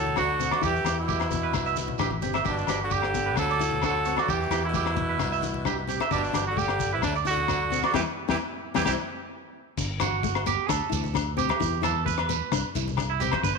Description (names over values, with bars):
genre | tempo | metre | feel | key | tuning
highlife guitar band | 131 BPM | 4/4 | straight | G major | A4 = 439 Hz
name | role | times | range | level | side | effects
warm trumpet | melody | 0.0-8.9 s | D4 to A4 | -29 LUFS | right 4 dB | none
raspy tenor saxophone | second line | 0.0-8.9 s | A2 to F#3 | -34 LUFS | left 10 dB | none
nylon-string guitar | accompaniment | 0.0-13.6 s | D3 to E4 | -35 LUFS | left 12 dB | none
fingered electric bass | bass | 0.0-13.6 s | G1 to E2 | -32 LUFS | right 1 dB | none
congas | percussion | 0.1-13.4 s | none | -39 LUFS | left 10 dB | none
electric guitar through a small old amp | arpeggios | 0.2-13.6 s | E4 to E5 | -30 LUFS | right 11 dB | slapback echo
crunchy breakbeat drum kit | drums | 0.2-13.5 s | crash cymbal, hi-hat, kick drum, rim click, snare drum | -33 LUFS | left 7 dB | none
agogo bells | percussion | 0.2-13.4 s | none | -34 LUFS | left 15 dB | none
shekere | percussion | 0.2-13.6 s | none | -36 LUFS | right 10 dB | none
room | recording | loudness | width
moderate echo chamber reverb, RT60 1.9 s, small room ambience | 1960s-style stereo with parts hard left and right | -24 LUFS | side -4 dB against mid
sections
0.0-9.8 A section; 9.8-13.6 B section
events
band accent 7.9-9.8; clean electric guitar solo 9.8-13.6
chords
0.0 D; 0.6 Em; 1.5 C; 2.5 G; 3.4 D; 4.3 Em; 5.2 C; 6.1 G; 7.0 D; 7.9 Em; 8.9 C; 9.8 G; 10.7 D5; 11.6 E5; 12.5 C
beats
0.17 | 0.63 1.08 1.54 2.00 | 2.46 2.91 3.37 3.83 | 4.28 4.74 5.20 5.66 | 6.12 6.57 7.03 7.49 | 7.95 8.40 8.86 9.32 | 9.78 10.24 10.69 11.15 | 11.61 12.06 12.52 12.98 | 13.43